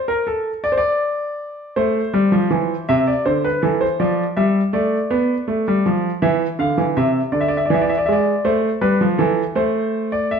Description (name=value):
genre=classical, baroque-style two-part invention for grand piano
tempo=54 BPM (dotted quarters)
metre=12/8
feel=straight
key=unclear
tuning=A4 = 440 Hz
part: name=warm concert grand piano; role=solo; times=0.0-10.4 s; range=C3 to F5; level=-16 LUFS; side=equal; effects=none
room=wet stone room reverb, RT60 1.3 s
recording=none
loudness=-16 LUFS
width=side -6 dB against mid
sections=0.0-10.4 A section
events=none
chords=0.0 N.C.; 1.8 Am; 4.0 Dm/F; 6.2 E7(no3); 8.5 Am